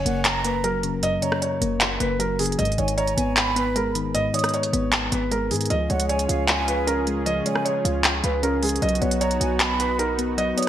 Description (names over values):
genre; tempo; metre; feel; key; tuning
hip hop, trap; 154 BPM; 4/4; half-time; G# dorian; A4 = 440 Hz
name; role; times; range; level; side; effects
felt-muted upright piano; melody; 0.0-10.7 s; G#4 to D#5; -26 LUFS; right 2 dB; none
breathy concert flute; second line; 0.0-10.7 s; E#5 to D#6; -30 LUFS; right 4 dB; digital delay
soft electric-piano-like synth keys; accompaniment; 0.0-10.7 s; F#2 to F#4; -27 LUFS; left 3 dB; chorus
hard-hitting 808-style bass; bass; 0.0-10.5 s; F#1 to G#2; -28 LUFS; equal; none
trap drum kit; drums; 0.1-10.7 s; handclaps, hi-hat, rim click; -24 LUFS; equal; gated reverb
warm analog pad; sustained chords; 5.7-10.7 s; C#3 to G#4; -31 LUFS; right 2 dB; chorus
room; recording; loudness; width
moderate plate reverb, RT60 2.0 s; bright 1980s-style digital production; -20 LUFS; side -11 dB against mid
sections
0.0-10.7 A section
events
none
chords
0.0 F#; 2.6 G#m; 5.7 C#; 8.8 B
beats
0.25 0.64 | 1.03 1.42 1.81 2.20 | 2.59 2.98 3.37 3.76 | 4.15 4.54 4.92 5.32 | 5.71 6.09 6.48 6.87 | 7.26 7.65 8.04 8.43 | 8.82 9.21 9.60 9.99 | 10.38